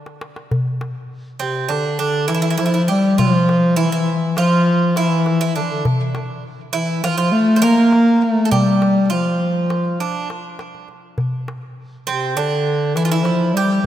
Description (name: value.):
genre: Turkish makam ensemble.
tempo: 202 BPM (eighths).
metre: 9/8.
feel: straight.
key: unclear.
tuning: A4 = 440 Hz.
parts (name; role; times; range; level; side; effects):
darbuka; percussion; 0.1-13.6 s; none; -23 LUFS; left 1 dB; none.
mellow bass clarinet; melody; 1.4-13.9 s; C3 to Bb3; -16 LUFS; left 1 dB; none.
Greek bouzouki; second line; 1.4-13.9 s; C4 to C5; -22 LUFS; right 5 dB; tape echo.
room: moderate lush hall reverb, RT60 2.6 s.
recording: rough home demo mix.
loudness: -15 LUFS.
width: side -11 dB against mid.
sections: 0.5-13.9 A section.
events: drum fill 0.0-0.5.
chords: none.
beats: 0.21 | 0.51 0.81 1.10 1.40 1.70 2.00 2.29 2.59 2.88 | 3.18 3.48 3.77 4.07 4.37 4.66 4.96 5.25 5.55 | 5.85 6.14 6.44 6.74 7.03 7.33 7.62 7.92 8.22 | 8.51 8.81 9.11 9.40 9.70 10.00 10.29 10.59 10.88 | 11.18 11.48 11.78 12.07 12.37 12.66 12.96 13.26 13.55 | 13.85.